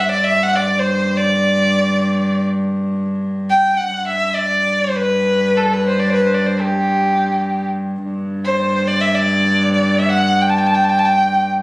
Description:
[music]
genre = Arabic maqam ensemble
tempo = free time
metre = none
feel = none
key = G maqam ajam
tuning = A4 = 440 Hz
[part]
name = rich violin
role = melody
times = 0.0-11.5 s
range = G4 to A5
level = -15 LUFS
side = equal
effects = none
[part]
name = rich cello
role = drone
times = 0.0-11.6 s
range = G2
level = -18 LUFS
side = equal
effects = none
[sound]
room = light reverb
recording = recorded on a phone in the room, club reverb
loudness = -14 LUFS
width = side -23 dB against mid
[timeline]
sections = 0.0-8.0 A section; 8.0-11.6 A section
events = none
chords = none

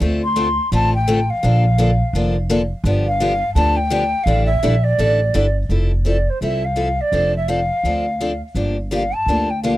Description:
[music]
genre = acoustic string swing (jazz manouche)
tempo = 169 BPM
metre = 4/4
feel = swing 60% on 8ths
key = F major from 5.7 s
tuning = A4 = 440 Hz
[part]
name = picked steel-string acoustic guitar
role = accompaniment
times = 0.0-9.7 s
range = D3 to A4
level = -21 LUFS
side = left 2 dB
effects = none
[part]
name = upright bass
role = bass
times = 0.0-9.8 s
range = F1 to D2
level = -19 LUFS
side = equal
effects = none
[part]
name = breathy mellow jazz flute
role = melody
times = 0.2-9.8 s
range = C5 to C6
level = -20 LUFS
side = equal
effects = tape echo
[sound]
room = little or no reverb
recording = dry, close 1970s-style studio recording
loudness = -16 LUFS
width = side -15 dB against mid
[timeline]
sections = 0.0-5.7 A section; 5.7-9.8 B section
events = none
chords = 0.0 Dm7; 1.4 Bbmaj7; 2.9 G7; 4.3 A7sus4; 5.7 Fmaj7; 7.1 Dm7/F; 8.5 Gm7

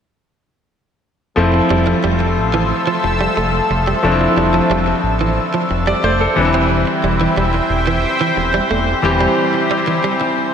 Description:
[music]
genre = pop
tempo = 90 BPM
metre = 4/4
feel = straight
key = F major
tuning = A4 = 439 Hz
[part]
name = bright grand piano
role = accompaniment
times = 1.4-10.5 s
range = E3 to D5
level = -17 LUFS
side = left 1 dB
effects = shimmer reverb
[part]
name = sweeping resonant pad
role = sustained chords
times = 2.0-10.5 s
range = C5 to E6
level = -22 LUFS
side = equal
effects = chorus, shimmer reverb
[part]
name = warm horn section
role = stabs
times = 1.4-10.5 s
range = A3 to C5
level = -23 LUFS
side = left 3 dB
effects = shimmer reverb
[part]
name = fat analog bass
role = bass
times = 1.4-9.3 s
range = E1 to A1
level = -20 LUFS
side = equal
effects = none
[part]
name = direct-recorded clean electric guitar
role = riff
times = 1.5-10.2 s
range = E3 to C4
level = -21 LUFS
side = right 4 dB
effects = tube saturation, wide subtle chorus, ping-pong delay, shimmer reverb
[sound]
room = wet lush hall reverb, RT60 1.9 s, small room ambience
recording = bright 1980s-style digital production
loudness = -13 LUFS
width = side -7 dB against mid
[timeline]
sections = 1.4-10.5 A section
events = none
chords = 1.4 Fmaj7; 6.4 C/E

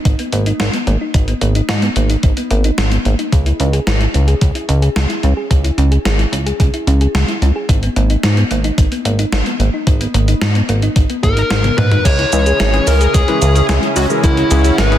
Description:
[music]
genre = synthwave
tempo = 110 BPM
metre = 4/4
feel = straight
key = C# dorian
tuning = A4 = 437 Hz
[part]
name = thumb-piano-like synth pluck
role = arpeggios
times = 0.1-15.0 s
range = A#3 to G#4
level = -22 LUFS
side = right 1 dB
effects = chorus, tape echo, shimmer reverb
[part]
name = chorused synth bass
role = bass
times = 0.1-15.0 s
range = G#1 to G#2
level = -14 LUFS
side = equal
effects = sidechain pumping
[part]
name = electronic kick drum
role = drums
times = 0.1-14.3 s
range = none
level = -13 LUFS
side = equal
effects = none
[part]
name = gated 80s digital drum machine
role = drums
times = 0.1-15.0 s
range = cabasa, crash cymbal, hi-hat, snare drum, toms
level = -20 LUFS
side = equal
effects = gated reverb, gated reverb snare
[part]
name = smooth overdriven lead guitar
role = melody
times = 11.2-15.0 s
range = E4 to C#5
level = -17 LUFS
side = equal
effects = tape echo, shimmer reverb
[part]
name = lush unison pad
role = sustained chords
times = 12.1-15.0 s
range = C#3 to G#4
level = -20 LUFS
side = equal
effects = chorus, sidechain pumping, shimmer reverb
[part]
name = warm electric grand piano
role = stabs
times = 12.3-15.0 s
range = E3 to B4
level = -21 LUFS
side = left 4 dB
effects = shimmer reverb
[sound]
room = light reverb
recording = dense, heavily limited modern master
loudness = -12 LUFS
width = side -12 dB against mid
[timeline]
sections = 0.0-12.1 A section; 12.1-15.0 B section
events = drum fill 11.6-12.1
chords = 0.0 G#m; 3.3 C#m; 7.7 G#m; 12.1 C#m

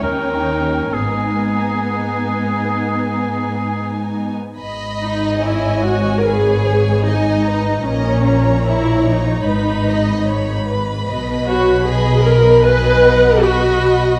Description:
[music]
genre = classical, slow romantic movement for symphony orchestra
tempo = 63-77 BPM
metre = 4/4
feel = rubato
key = G# minor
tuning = A4 = 440 Hz
[part]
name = dark symphonic violin section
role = melody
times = 0.0-14.2 s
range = A#4 to G#5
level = -29 LUFS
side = equal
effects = none
[part]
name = clear oboe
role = second line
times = 0.0-4.1 s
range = G#4 to A#4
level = -25 LUFS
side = equal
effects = none
[part]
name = rich studio violin section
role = second line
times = 0.0-14.2 s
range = D#4 to B5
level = -27 LUFS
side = equal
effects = none
[part]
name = warm studio viola section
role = accompaniment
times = 0.0-14.2 s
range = B3 to B4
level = -19 LUFS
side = equal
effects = none
[part]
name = warm symphonic cello section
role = bass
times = 0.0-14.2 s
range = D#2 to B2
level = -23 LUFS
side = equal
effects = none
[part]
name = warm symphonic double bass section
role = bass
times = 0.0-14.2 s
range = G#1 to D#2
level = -23 LUFS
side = equal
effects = none
[sound]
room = moderate scoring stage reverb, RT60 1.8 s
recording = none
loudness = -16 LUFS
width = mono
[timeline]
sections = 0.0-4.6 A section; 4.6-14.2 B section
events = none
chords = 0.0 D#7; 0.9 G#m; 7.9 D#5/A#; 9.5 G#m; 11.1 B

